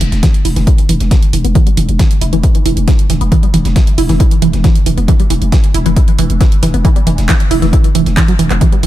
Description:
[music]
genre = driving peak-time techno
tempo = 136 BPM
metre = 4/4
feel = straight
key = unclear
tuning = A4 = 440 Hz
[part]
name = tight sequenced synth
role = riff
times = 0.0-8.9 s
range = E3 to E4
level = -16 LUFS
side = right 2 dB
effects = chorus, phaser, sidechain pumping, ping-pong delay
[part]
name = growling 808-style bass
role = bass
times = 0.0-8.9 s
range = E1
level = -16 LUFS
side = equal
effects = tube saturation, sidechain pumping, low-pass filter
[part]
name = breakbeat sampler-style drum kit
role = drums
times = 0.0-8.9 s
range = hi-hat, snare drum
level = -29 LUFS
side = left 1 dB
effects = overdrive, high-pass filter on snare, sidechain pumping on hats, high-pass filter on hats, high-pass filter on room
[part]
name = techno drum kit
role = drums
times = 0.0-8.9 s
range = handclaps, hi-hat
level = -22 LUFS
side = right 2 dB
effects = none
[part]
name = electronic kick drum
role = drums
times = 0.2-8.7 s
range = none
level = -11 LUFS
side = equal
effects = none
[sound]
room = light reverb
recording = none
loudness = -9 LUFS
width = side -14 dB against mid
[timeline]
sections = 0.0-8.9 A section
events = none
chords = none

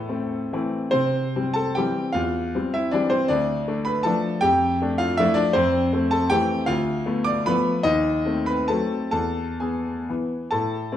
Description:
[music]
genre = classical, romantic triple-time dance for piano with dotted rhythms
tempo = 119-169 BPM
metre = 3/4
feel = rubato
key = C major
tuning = A4 = 441 Hz
[part]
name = clear grand piano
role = solo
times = 0.0-11.0 s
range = D2 to D6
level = -20 LUFS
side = left 1 dB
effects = none
[sound]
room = wet recital hall reverb, RT60 1.4 s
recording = minimal, uncompressed stereo recording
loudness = -20 LUFS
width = side -11 dB against mid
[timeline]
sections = 0.9-10.5 A section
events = none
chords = 0.0 Am; 0.9 C; 2.2 C/E; 3.3 Dm; 4.4 Dm/F; 5.6 Fmaj7; 6.7 Bm7b5/D; 7.9 D#dim7; 9.1 E

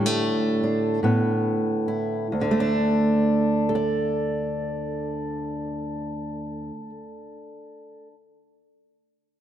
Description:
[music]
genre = folk, solo fingerstyle acoustic guitar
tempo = 43-55 BPM (dotted quarters)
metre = 6/8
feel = rubato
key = unclear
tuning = A4 = 441 Hz
[part]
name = fingerpicked steel-string acoustic guitar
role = solo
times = 0.0-8.1 s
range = D2 to D5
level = -23 LUFS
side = right 1 dB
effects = none
[sound]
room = wet concert hall reverb, RT60 2.6 s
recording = none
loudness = -22 LUFS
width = side -10 dB against mid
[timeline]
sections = 0.0-2.3 A section; 2.3-7.8 B section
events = slowing down 0.0-2.3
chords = 0.0 Asus4; 1.0 Asus2; 2.3 D5

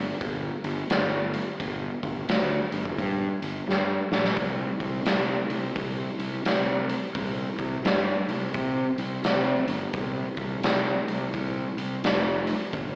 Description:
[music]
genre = blues rock power trio and southern rock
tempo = 86 BPM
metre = 4/4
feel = swing 62% on 8ths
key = unclear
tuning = A4 = 440 Hz
[part]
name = fuzz fingered electric bass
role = bass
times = 0.0-13.0 s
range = F1 to C3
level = -28 LUFS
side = equal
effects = overdrive
[part]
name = raw garage drum kit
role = drums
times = 0.2-12.9 s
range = hi-hat, kick drum, snare drum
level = -27 LUFS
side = equal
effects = none
[sound]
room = little or no reverb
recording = live gig heard through the venue's PA, recital hall reverb, AM radio sound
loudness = -24 LUFS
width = side -32 dB against mid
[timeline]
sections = 0.0-13.0 A section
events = drum fill 3.7-4.4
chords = none

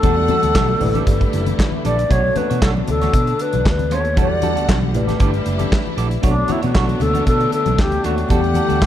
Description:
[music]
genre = disco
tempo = 116 BPM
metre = 4/4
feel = straight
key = B minor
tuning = A4 = 440 Hz
[part]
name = bright wooden-headed alto flute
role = melody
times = 0.0-8.9 s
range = D4 to D5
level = -20 LUFS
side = left 2 dB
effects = none
[part]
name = mellow tine electric piano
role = accompaniment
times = 0.0-8.9 s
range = E3 to D5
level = -26 LUFS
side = left 2 dB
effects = medium stereo tremolo
[part]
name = semi-hollow electric guitar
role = accompaniment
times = 0.0-8.9 s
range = G3 to D5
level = -27 LUFS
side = right 8 dB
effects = none
[part]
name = rich studio string section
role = sustained chords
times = 0.0-8.9 s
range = D3 to F#5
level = -26 LUFS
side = equal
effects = none
[part]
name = fingered electric bass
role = bass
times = 0.0-8.9 s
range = F#1 to B2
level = -20 LUFS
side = right 1 dB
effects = none
[part]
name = warm soul drum kit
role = drums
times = 0.0-8.9 s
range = handclaps, hi-hat, kick drum, snare drum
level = -19 LUFS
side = equal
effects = none
[part]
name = congas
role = percussion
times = 0.0-8.9 s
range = none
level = -26 LUFS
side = left 6 dB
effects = none
[sound]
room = light reverb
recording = dark, warm production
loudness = -15 LUFS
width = side -11 dB against mid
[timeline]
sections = 0.0-8.9 A section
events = none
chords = 0.0 Em11; 0.8 A7sus4; 2.1 Bm9; 4.2 Em11; 4.9 A7sus4; 6.2 Bm9; 8.3 Em11

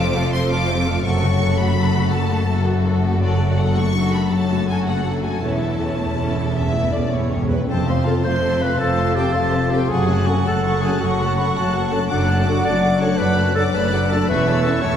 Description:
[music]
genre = cinematic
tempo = 110 BPM (dotted quarters)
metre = 12/8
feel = straight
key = unclear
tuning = A4 = 440 Hz
[part]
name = rich symphonic violin section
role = melody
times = 0.0-15.0 s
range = C5 to D6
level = -30 LUFS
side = left 2 dB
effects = none
[part]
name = warm symphonic violin section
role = second line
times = 0.0-15.0 s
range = E4 to F#6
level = -27 LUFS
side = left 2 dB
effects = none
[part]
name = warm symphonic viola section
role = accompaniment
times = 0.0-15.0 s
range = F#3 to C#5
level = -27 LUFS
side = right 1 dB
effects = none
[part]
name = concert harp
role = arpeggios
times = 0.0-15.0 s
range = E2 to C5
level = -26 LUFS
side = left 4 dB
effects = none
[part]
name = rich symphonic cello section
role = bass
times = 0.0-15.0 s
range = E2 to F#2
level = -23 LUFS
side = equal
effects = none
[part]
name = warm symphonic double bass section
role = bass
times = 0.0-15.0 s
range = E1 to F#1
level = -23 LUFS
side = right 1 dB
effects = none
[part]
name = timpani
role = percussion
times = 5.4-7.7 s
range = E2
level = -26 LUFS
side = right 1 dB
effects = none
[part]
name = warm clarinet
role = second line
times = 7.7-15.0 s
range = C4 to D5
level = -22 LUFS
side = equal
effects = none
[part]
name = dark French horn section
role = sustained chords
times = 8.1-14.7 s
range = C4 to A4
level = -28 LUFS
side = left 1 dB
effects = none
[part]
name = mellow hollow silver concert flute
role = second line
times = 8.8-15.0 s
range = D5 to C#6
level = -27 LUFS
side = equal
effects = none
[sound]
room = wet scoring stage reverb, RT60 1.9 s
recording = heard from further back in the room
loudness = -16 LUFS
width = side -9 dB against mid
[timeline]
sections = 0.0-7.7 A section; 7.7-15.0 A section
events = timpani fill 5.4-7.7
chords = 0.0 F; 1.1 F#m; 3.2 D/F#; 5.4 A/E; 7.7 F; 9.9 F#m; 12.1 D/F#; 14.3 A/E

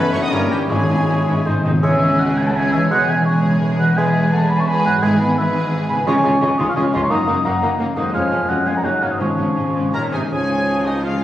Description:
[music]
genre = classical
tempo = 154-175 BPM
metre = 3/4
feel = rubato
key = C# minor, Db major from 6.1 s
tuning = A4 = 440 Hz
[part]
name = warm symphonic violin section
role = melody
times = 0.0-11.2 s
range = Eb4 to D#6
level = -33 LUFS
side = left 2 dB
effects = none
[part]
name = mellow clarinet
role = second line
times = 0.0-11.2 s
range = C4 to C#5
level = -30 LUFS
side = left 2 dB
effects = none
[part]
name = mellow oboe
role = second line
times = 0.0-11.2 s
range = Eb4 to Eb6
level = -22 LUFS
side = equal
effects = none
[part]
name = warm symphonic violin section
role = second line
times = 0.0-11.2 s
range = B#3 to Bb5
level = -30 LUFS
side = left 2 dB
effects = none
[part]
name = rich symphonic viola section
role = accompaniment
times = 0.0-11.2 s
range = G#3 to D#5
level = -26 LUFS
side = right 1 dB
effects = none
[part]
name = warm bassoon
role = accompaniment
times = 0.0-11.2 s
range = Eb3 to Bb3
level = -26 LUFS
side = right 1 dB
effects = none
[part]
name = mellow French horn section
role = sustained chords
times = 0.0-11.2 s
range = C#3 to F4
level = -27 LUFS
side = left 2 dB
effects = none
[part]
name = concert harp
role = arpeggios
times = 0.0-11.2 s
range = F2 to C#6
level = -25 LUFS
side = left 3 dB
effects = none
[part]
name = clear trumpet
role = stabs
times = 0.0-1.5, 9.9-11.2 s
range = Eb4 to D#5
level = -30 LUFS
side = equal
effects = none
[part]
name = mellow tuba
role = bass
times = 0.0-1.7, 10.3-11.2 s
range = F#1 to Db2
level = -28 LUFS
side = right 1 dB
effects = none
[part]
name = rich symphonic cello section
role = bass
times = 0.0-11.2 s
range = E2 to C#3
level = -24 LUFS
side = right 1 dB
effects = none
[part]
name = rich symphonic double bass section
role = bass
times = 0.0-11.2 s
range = E1 to C#2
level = -26 LUFS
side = right 2 dB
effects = none
[part]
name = silver concert flute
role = second line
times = 0.1-11.2 s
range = Gb4 to Db6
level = -26 LUFS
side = equal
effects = none
[part]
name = timpani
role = percussion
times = 0.7-1.8, 5.0-6.6, 9.2-9.7 s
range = G#2 to Db3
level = -24 LUFS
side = equal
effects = none
[sound]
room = wet scoring stage reverb, RT60 1.6 s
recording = recorded on a phone in the room, studio reverb, compression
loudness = -15 LUFS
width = side -13 dB against mid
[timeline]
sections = 0.0-1.8 A section; 1.8-10.3 B section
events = timpani fill 1.5-1.8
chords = 0.3 Gdim7; 0.7 C#m/G#; 1.5 G#; 1.8 C#m; 2.9 C#m/E; 4.0 E; 5.0 E/G#; 6.1 Db; 7.1 Ebm/Gb; 8.1 Db/F; 8.8 Ebm/Gb; 9.2 Db/Ab; 9.9 Ab; 10.3 Db

